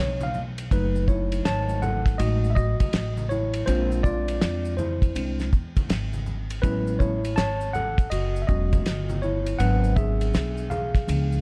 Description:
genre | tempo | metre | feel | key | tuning
hip hop, jazz-hop | 81 BPM | 4/4 | swing 64% on 16ths | F# dorian | A4 = 439 Hz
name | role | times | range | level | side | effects
tine electric piano | accompaniment | 0.0-11.4 s | E#3 to A5 | -30 LUFS | equal | overdrive
upright bass | bass | 0.0-11.4 s | E1 to E#2 | -29 LUFS | equal | none
congas and maracas | percussion | 0.2-11.4 s | none | -40 LUFS | equal | none
cloth-damped thuddy drum kit | drums | 0.6-11.3 s | hi-hat, kick drum, ride cymbal, snare drum | -28 LUFS | equal | none
room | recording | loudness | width
small room ambience | none | -25 LUFS | mono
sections
0.7-11.4 A section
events
break 0.0-0.7; tine electric piano solo 0.7-11.4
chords
0.0 C#7b9; 0.7 F#m69; 3.7 A#9; 6.6 Amaj13; 9.6 G#m7b5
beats
| 0.71 1.45 2.19 2.93 | 3.67 4.41 5.15 5.89 | 6.64 7.38 8.12 8.86 | 9.60 10.34 11.08

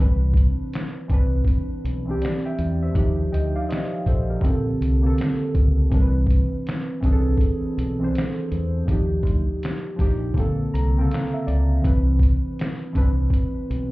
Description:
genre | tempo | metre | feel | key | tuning
lo-fi hip hop | 81 BPM | 4/4 | swing 65% on 16ths | C major | A4 = 440 Hz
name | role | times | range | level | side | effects
muted felt-like synth keys | accompaniment | 0.0-13.9 s | Db3 to Bb5 | -25 LUFS | right 1 dB | chorus, cassette tape, low-pass filter
deep dub fingered electric bass | bass | 0.0-13.9 s | Bb1 to E2 | -22 LUFS | equal | none
trip hop sampler-style drum kit | drums | 0.3-13.9 s | finger snaps, hi-hat, kick drum, snare drum | -22 LUFS | equal | none
room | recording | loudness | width
light reverb | heard muffled through a wall, club reverb, EQ | -19 LUFS | side -20 dB against mid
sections
0.0-13.9 A section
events
synth keys fill 10.4-11.8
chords
0.0 Cmaj9; 3.0 Ebmaj9; 4.4 Bbmaj9; 5.9 Cmaj9; 8.9 Ebmaj9; 10.4 Bbmaj9; 11.8 Cmaj9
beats
0.73 1.47 2.21 | 2.95 3.69 4.43 5.17 | 5.92 6.66 7.40 8.14 | 8.88 9.62 10.36 11.10 | 11.84 12.58 13.32

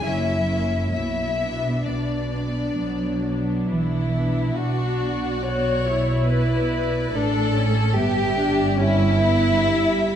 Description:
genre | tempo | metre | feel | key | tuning
classical, slow romantic movement for string orchestra | 64-75 BPM | 4/4 | rubato | B minor | A4 = 439 Hz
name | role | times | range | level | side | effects
warm chamber violin section | melody | 0.0-10.2 s | D5 to E5 | -31 LUFS | left 5 dB | none
warm chamber violin section | second line | 0.0-10.2 s | D4 to C#5 | -24 LUFS | left 1 dB | none
rich studio viola section | accompaniment | 0.0-10.2 s | G3 to F#4 | -27 LUFS | equal | none
dark chamber cello section | bass | 0.0-10.2 s | F#2 to F#3 | -26 LUFS | right 2 dB | none
dark chamber double bass section | bass | 0.0-10.2 s | F#1 to B1 | -26 LUFS | right 1 dB | none
room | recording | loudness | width
wet scoring stage reverb, RT60 1.7 s | dark, warm production | -19 LUFS | side -9 dB against mid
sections
0.0-4.5 A section; 4.5-10.2 A section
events
none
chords
0.0 F#7; 0.9 Bm; 7.9 Em/G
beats
0.04 | 0.94 1.86 2.77 3.67 | 4.54 5.43 6.29 7.13 | 7.95 8.77 9.57

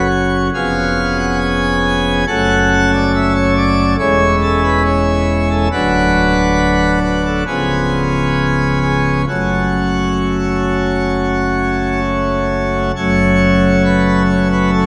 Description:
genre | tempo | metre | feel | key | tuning
classical, chorale-style piece for pipe organ | 65-70 BPM | 4/4 | rubato | F# minor | A4 = 439 Hz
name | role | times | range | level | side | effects
pipe organ, plenum | solo | 0.0-14.9 s | C#1 to G#5 | -15 LUFS | equal | none
room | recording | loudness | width
wet church reverb, RT60 3.1 s | none | -15 LUFS | mono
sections
0.0-13.0 A section; 13.0-14.9 A section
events
none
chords
0.0 F#5; 0.5 C#7/E#; 2.3 F#m; 4.0 C#m/E; 5.7 Bm/D; 7.5 C#7; 9.3 F#m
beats
0.54 1.41 | 2.28 3.15 4.00 4.86 | 5.73 6.60 7.48 8.38 | 9.29 10.22 11.14 12.05 | 12.96 13.85 14.73

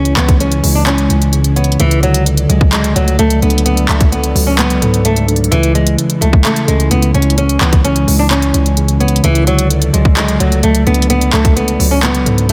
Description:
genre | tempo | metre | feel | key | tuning
hip hop, trap | 129 BPM | 4/4 | half-time | unclear | A4 = 441 Hz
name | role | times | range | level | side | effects
flamenco guitar | melody | 0.0-12.5 s | E3 to D4 | -18 LUFS | equal | digital delay
tine electric piano | accompaniment | 0.0-12.5 s | C#2 to C#5 | -19 LUFS | equal | none
airy breathy pad | sustained chords | 0.0-12.5 s | C#3 to D5 | -25 LUFS | equal | chorus
distorted 808-style bass | bass | 0.0-12.5 s | C#2 to G#2 | -17 LUFS | equal | distortion
trap drum kit | drums | 0.1-12.5 s | handclaps, hi-hat, kick drum | -17 LUFS | equal | none
room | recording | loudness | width
little or no reverb | dense, heavily limited modern master | -12 LUFS | mono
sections
0.0-12.5 A section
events
none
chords
0.0 C#m; 1.8 D/C#; 5.5 C#m; 9.2 D/C#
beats
0.40 0.87 1.33 | 1.80 2.26 2.73 3.19 | 3.66 4.12 4.59 5.05 | 5.52 5.98 6.45 6.91 | 7.38 7.84 8.31 8.77 | 9.24 9.70 10.17 10.63 | 11.10 11.56 12.03 12.49

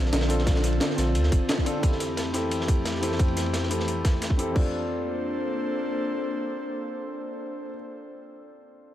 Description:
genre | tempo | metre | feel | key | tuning
liquid drum and bass | 176 BPM | 4/4 | straight | Bb lydian | A4 = 440 Hz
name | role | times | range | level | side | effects
warm grand piano | accompaniment | 0.0-8.9 s | C4 to A4 | -30 LUFS | left 1 dB | low-pass filter, tape echo
airy breathy pad | sustained chords | 0.0-7.7 s | F2 to C5 | -31 LUFS | equal | chorus
warm sub bass | bass | 0.0-1.4 s | F1 to D2 | -24 LUFS | equal | none
crunchy breakbeat drum kit | drums | 0.1-4.3 s | ride cymbal, snare drum | -35 LUFS | equal | high-pass filter on cymbals, high-pass filter on snare, high-pass filter on room
jungle sampler-style drum kit | drums | 0.1-4.6 s | crash cymbal, hi-hat, snare drum | -31 LUFS | equal | overdrive
electronic kick drum | drums | 0.5-4.6 s | none | -23 LUFS | equal | overdrive
room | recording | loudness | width
light reverb, small room ambience | none | -24 LUFS | side -12 dB against mid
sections
0.0-4.6 A section; 4.6-7.3 B section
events
none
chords
0.0 Bbmaj9; 1.8 Fmaj9; 4.6 Bbmaj9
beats
0.13 | 0.47 0.81 1.15 1.49 | 1.83 2.17 2.51 2.85 | 3.19 3.54 3.88 4.22 | 4.56 4.90 5.24 5.58 | 5.92 6.26 6.60 6.94

